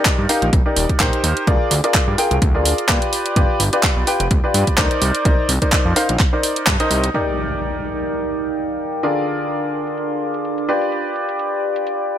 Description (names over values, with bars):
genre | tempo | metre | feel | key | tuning
piano house | 127 BPM | 4/4 | swing 55% on 16ths | Eb major | A4 = 443 Hz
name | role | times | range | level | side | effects
clear baby grand piano | riff | 0.0-12.2 s | D3 to G5 | -20 LUFS | left 1 dB | sidechain pumping, digital delay
electronic kick drum | drums | 0.1-6.8 s | none | -18 LUFS | equal | none
garage drum kit | drums | 0.1-12.0 s | handclaps, hi-hat | -20 LUFS | right 1 dB | overdrive, low-pass filter on hats, low-pass filter on snare
fat analog bass | bass | 0.2-7.1 s | Eb1 to Bb2 | -20 LUFS | equal | sidechain pumping
impact | sound effects | 7.1-9.0 s | none | -29 LUFS | equal | none
warbly tape-like pad | texture | 7.7-12.2 s | D4 to D6 | -24 LUFS | right 2 dB | chorus, built-in reverb, sidechain pumping
room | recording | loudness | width
light reverb | none | -16 LUFS | side -10 dB against mid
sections
0.0-7.1 A section; 7.1-12.2 B section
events
band accent 6.7; impact 7.1-9.0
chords
0.0 Ebmaj7; 1.5 Bb7/D; 3.1 G7; 5.0 Cm9; 7.1 Ebmaj7; 9.0 Bb7/D; 10.7 G7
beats
0.06 0.53 1.00 | 1.47 1.95 2.42 2.89 | 3.36 3.84 4.31 4.78 | 5.25 5.73 6.20 6.67 | 7.14 7.62 8.09 8.56 | 9.03 9.51 9.98 10.45 | 10.92 11.39 11.87